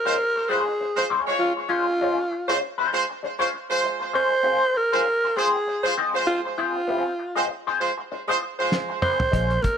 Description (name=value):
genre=funk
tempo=98 BPM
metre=4/4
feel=swing 56% on 16ths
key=unclear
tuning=A4 = 440 Hz
part: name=raspy alto saxophone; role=melody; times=0.0-9.8 s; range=F4 to C5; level=-22 LUFS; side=right 1 dB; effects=none
part: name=clear horn section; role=second line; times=0.1-9.0 s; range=Ab3 to Db5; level=-26 LUFS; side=right 2 dB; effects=tape echo
part: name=electric guitar through a small old amp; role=accompaniment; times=0.1-9.7 s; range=Ab3 to Eb5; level=-27 LUFS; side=left 5 dB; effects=wah, analog chorus
part: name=cloth-damped thuddy drum kit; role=drums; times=8.7-9.8 s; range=hi-hat, kick drum, snare drum, toms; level=-25 LUFS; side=equal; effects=none
part: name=vintage muted fingered electric bass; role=bass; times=9.3-9.6 s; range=Bb1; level=-24 LUFS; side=equal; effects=none
part: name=congas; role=percussion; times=9.6-9.8 s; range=none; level=-38 LUFS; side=right 5 dB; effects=none
room=light reverb, studio reverb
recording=none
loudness=-21 LUFS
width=side -7 dB against mid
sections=0.0-9.8 A section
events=drum fill 8.7-9.3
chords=0.0 Bbm9 (rootless); 4.4 Ab6